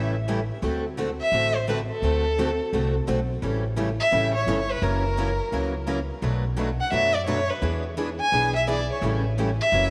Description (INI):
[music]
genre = acoustic string swing (jazz manouche)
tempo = 172 BPM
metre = 4/4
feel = swing 61% on 8ths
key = A mixolydian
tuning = A4 = 440 Hz
[part]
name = warm violin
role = melody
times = 0.0-9.9 s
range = A4 to G#5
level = -27 LUFS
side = equal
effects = none
[part]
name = picked steel-string acoustic guitar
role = accompaniment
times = 0.0-9.9 s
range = B2 to A4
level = -33 LUFS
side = equal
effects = none
[part]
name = picked steel-string acoustic guitar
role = accompaniment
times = 0.0-9.9 s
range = B2 to B4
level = -33 LUFS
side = equal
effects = none
[part]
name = upright bass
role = bass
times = 0.0-9.9 s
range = F#1 to F#2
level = -30 LUFS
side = equal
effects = none
[sound]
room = wet plate reverb, RT60 3.6 s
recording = none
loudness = -24 LUFS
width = mono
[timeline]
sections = 0.0-9.9 A section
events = none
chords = 0.0 A7; 0.6 D7; 3.4 A7; 4.8 F#7; 6.2 Bm7; 7.6 E7; 9.0 A7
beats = 0.28 | 0.63 0.98 1.33 1.68 | 2.03 2.38 2.73 3.08 | 3.43 3.77 4.12 4.47 | 4.83 5.17 5.52 5.87 | 6.22 6.57 6.92 7.27 | 7.62 7.97 8.32 8.68 | 9.03 9.38 9.72